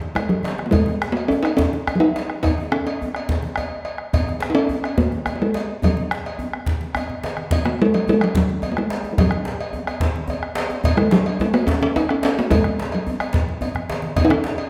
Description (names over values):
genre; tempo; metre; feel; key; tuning
west african traditional, West African drum ensemble; 143 BPM (dotted quarters); 12/8; straight; F# major pentatonic; A4 = 440 Hz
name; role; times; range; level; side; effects
congas; percussion; 0.0-14.4 s; none; -31 LUFS; equal; none
talking drum; melody; 0.2-14.7 s; F#3 to D#4; -22 LUFS; equal; none
bombo; percussion; 0.2-14.5 s; none; -27 LUFS; equal; none
cowbell; percussion; 0.2-14.7 s; none; -32 LUFS; equal; none
djembe; percussion; 0.2-14.6 s; none; -31 LUFS; equal; none
room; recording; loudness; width
wet recital hall reverb, RT60 1.6 s; none; -21 LUFS; mono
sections
0.0-7.5 A section; 7.5-14.7 B section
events
speeding up 0.0-14.7; drum fill 0.2-0.7, 7.1-7.5, 13.5-14.2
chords
none